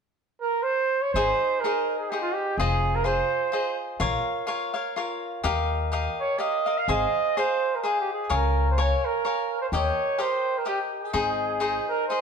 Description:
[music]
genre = mexican folk, mariachi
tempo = 126 BPM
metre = 3/4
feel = swing 54% on 8ths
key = Ab major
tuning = A4 = 440 Hz
[part]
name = warm trumpet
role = melody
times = 0.4-3.8, 6.2-12.2 s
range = F4 to F5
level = -25 LUFS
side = right 4 dB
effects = none
[part]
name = upright bass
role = bass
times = 1.1-11.8 s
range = F1 to Eb2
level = -27 LUFS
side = left 1 dB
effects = none
[part]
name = cavaquinho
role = accompaniment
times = 1.2-12.2 s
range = Eb4 to Ab5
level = -27 LUFS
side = left 4 dB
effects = none
[sound]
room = moderate stone room reverb, RT60 1.1 s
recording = band playing live in one room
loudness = -23 LUFS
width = side -6 dB against mid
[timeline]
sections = 0.0-1.1 A section; 1.1-12.2 B section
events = none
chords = 0.0 N.C.; 1.1 Ab; 2.6 Fm7; 4.0 Bbm; 5.4 Ebadd9; 6.9 Ab6; 8.3 Db6; 9.7 Eb; 11.2 Ab

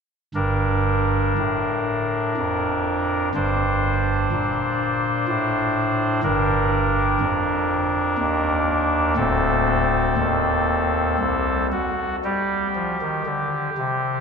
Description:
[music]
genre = classical, chorale-style piece for pipe organ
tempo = 61 BPM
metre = 3/4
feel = uneven beats, rubato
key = G minor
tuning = A4 = 440 Hz
[part]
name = chamber organ, soft reed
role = solo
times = 0.3-14.2 s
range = D1 to C5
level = -19 LUFS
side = equal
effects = none
[sound]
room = wet cathedral reverb, RT60 4.6 s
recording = none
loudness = -19 LUFS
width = side -6 dB against mid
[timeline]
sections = 0.4-12.2 A section; 12.2-14.2 B section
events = none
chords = 0.4 Gm; 3.3 D5/G; 6.2 Gm; 9.2 D5; 12.2 G5

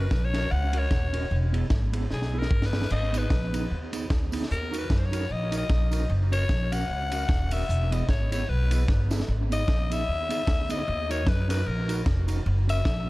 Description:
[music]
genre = ska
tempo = 151 BPM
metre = 4/4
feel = swing 57% on 8ths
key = G# minor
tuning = A4 = 440 Hz
[part]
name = raspy alto saxophone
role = melody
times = 0.0-13.1 s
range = G#4 to F#5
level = -32 LUFS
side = left 3 dB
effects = analog delay
[part]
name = mellow electric guitar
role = accompaniment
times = 0.0-13.1 s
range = B3 to A#4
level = -35 LUFS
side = right 4 dB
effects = analog delay
[part]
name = upright bass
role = bass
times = 0.0-13.1 s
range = D#1 to F#2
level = -26 LUFS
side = equal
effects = none
[part]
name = crunchy breakbeat drum kit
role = drums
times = 0.1-13.0 s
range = crash cymbal, hi-hat, kick drum, ride cymbal, snare drum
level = -28 LUFS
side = equal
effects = analog delay
[part]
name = tambourine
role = percussion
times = 3.1-12.8 s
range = none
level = -46 LUFS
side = right 3 dB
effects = none
[sound]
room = little or no reverb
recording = none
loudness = -23 LUFS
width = side -19 dB against mid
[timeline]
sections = 0.0-13.1 A section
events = alto saxophone solo 0.0-13.1; drum fill 2.1-2.9, 8.9-9.3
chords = 0.0 F#; 1.3 E; 2.9 G#m; 4.5 D#m; 6.1 F#; 7.7 E; 9.3 G#m; 10.9 D#m; 12.5 F#

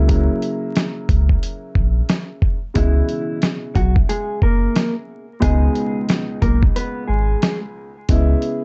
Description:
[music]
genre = hip hop, boom-bap hip-hop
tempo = 90 BPM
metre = 4/4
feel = swing 61% on 16ths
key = C# dorian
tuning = A4 = 440 Hz
[part]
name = dark concert grand piano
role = accompaniment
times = 0.0-8.6 s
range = C#2 to E4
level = -27 LUFS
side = equal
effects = cassette tape, high-pass filter, low-pass filter
[part]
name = warm sub bass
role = bass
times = 0.0-8.4 s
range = F#1 to C#2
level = -19 LUFS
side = equal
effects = none
[part]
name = dusty soul sampler-style drum kit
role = drums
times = 0.1-8.6 s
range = hi-hat, kick drum, snare drum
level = -20 LUFS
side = equal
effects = none
[part]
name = mellow electric guitar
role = melody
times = 2.8-7.6 s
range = E3 to B4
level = -27 LUFS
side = equal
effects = high-pass filter, low-pass filter
[sound]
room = light reverb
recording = dark, warm production, vinyl crackle, nothing above 8.0 kHz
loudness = -19 LUFS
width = mono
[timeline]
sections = 0.0-8.6 A section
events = none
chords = 0.0 F#7/C#; 2.8 C#m7; 5.4 G#m; 8.1 C#m7

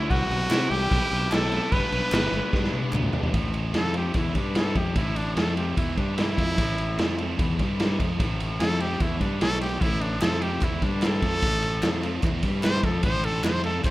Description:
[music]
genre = indie rock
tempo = 148 BPM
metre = 4/4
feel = straight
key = A minor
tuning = A4 = 440 Hz
[part]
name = brilliant trumpet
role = melody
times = 0.0-13.9 s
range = D4 to C5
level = -29 LUFS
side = equal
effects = none
[part]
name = shimmering bell with halo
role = second line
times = 0.0-2.9 s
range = F#5 to B5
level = -39 LUFS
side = left 1 dB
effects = none
[part]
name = high-gain distorted guitar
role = riff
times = 0.0-13.9 s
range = E3 to E4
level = -34 LUFS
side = right 6 dB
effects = distortion, wide subtle chorus, slapback echo
[part]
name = raw garage guitar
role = riff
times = 0.0-13.9 s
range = G2 to G4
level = -34 LUFS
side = left 5 dB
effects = overdrive
[part]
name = fuzz fingered electric bass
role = bass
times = 0.0-13.9 s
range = G1 to C3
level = -28 LUFS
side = equal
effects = overdrive
[part]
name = raw garage drum kit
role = drums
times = 0.1-13.9 s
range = crash cymbal, kick drum, ride cymbal, snare drum, toms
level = -26 LUFS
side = equal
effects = none
[part]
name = group handclap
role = percussion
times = 0.5-3.0, 10.2-13.9 s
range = none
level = -39 LUFS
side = left 1 dB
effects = none
[sound]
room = small room ambience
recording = rough home demo mix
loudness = -22 LUFS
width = side -17 dB against mid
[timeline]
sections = 0.0-3.3 A section; 3.3-13.9 B section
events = drum fill 2.5-3.3; trumpet solo 3.3-13.9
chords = 0.1 Cmaj7; 1.7 G; 3.3 Am

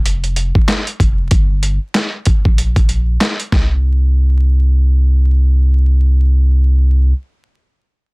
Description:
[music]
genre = hip hop, boom-bap hip-hop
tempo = 95 BPM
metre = 4/4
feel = swing 61% on 16ths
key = unclear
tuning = A4 = 441 Hz
[part]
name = warm sub bass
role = bass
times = 0.0-7.1 s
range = F1 to C2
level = -12 LUFS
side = equal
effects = none
[part]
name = dusty soul sampler-style drum kit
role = drums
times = 0.1-3.7 s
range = handclaps, hi-hat, kick drum, snare drum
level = -13 LUFS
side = equal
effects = overdrive
[sound]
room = little or no reverb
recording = dense, heavily limited modern master, vinyl crackle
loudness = -12 LUFS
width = side -32 dB against mid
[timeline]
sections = 0.0-3.8 A section; 3.8-6.4 B section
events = none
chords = none

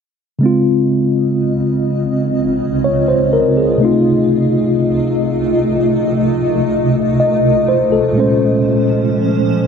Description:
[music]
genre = R&B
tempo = 62 BPM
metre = 4/4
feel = straight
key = Db major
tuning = A4 = 439 Hz
[part]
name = mellow tine electric piano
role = accompaniment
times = 0.4-9.7 s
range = Bb2 to Eb5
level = -14 LUFS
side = left 1 dB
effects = slow stereo tremolo
[part]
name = granular cloud pad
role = sustained chords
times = 1.3-9.7 s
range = C2 to Eb5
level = -17 LUFS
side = right 2 dB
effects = built-in reverb
[sound]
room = moderate plate reverb, RT60 2.2 s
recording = none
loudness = -12 LUFS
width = side -6 dB against mid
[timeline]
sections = 0.4-9.7 A section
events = none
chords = 0.4 Dbmaj7; 3.8 F7/C; 8.2 Bbm9

